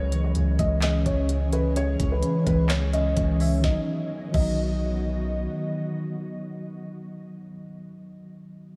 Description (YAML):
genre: hip hop, trap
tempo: 128 BPM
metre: 4/4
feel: half-time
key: B major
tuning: A4 = 439 Hz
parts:
  - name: felt-muted upright piano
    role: melody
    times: 0.0-5.0 s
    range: B4 to E5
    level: -33 LUFS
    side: equal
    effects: analog chorus, analog delay
  - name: mellow tine electric piano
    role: accompaniment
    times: 0.0-8.8 s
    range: C#3 to C#5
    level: -32 LUFS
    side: equal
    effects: none
  - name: ethereal airy pad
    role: sustained chords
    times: 0.0-6.7 s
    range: D#3 to D#5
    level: -34 LUFS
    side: equal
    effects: ensemble chorus, built-in reverb
  - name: long sustained 808-style bass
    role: bass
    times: 0.0-5.5 s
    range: B1 to C#2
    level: -28 LUFS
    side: equal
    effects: none
  - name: trap drum kit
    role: drums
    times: 0.1-4.5 s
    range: crash cymbal, handclaps, hi-hat, kick drum, snare drum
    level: -30 LUFS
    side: equal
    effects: none
room: wet cathedral reverb, RT60 4.7 s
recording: dreamy mix soaked in reverb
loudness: -25 LUFS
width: mono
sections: 0.0-3.6 A section; 3.6-7.4 B section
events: none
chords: 0.0 C#m; 3.6 B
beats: 0.36 0.82 1.29 | 1.76 2.23 2.70 3.17 | 3.64 4.11 4.58 5.04 | 5.51 5.98 6.45 6.92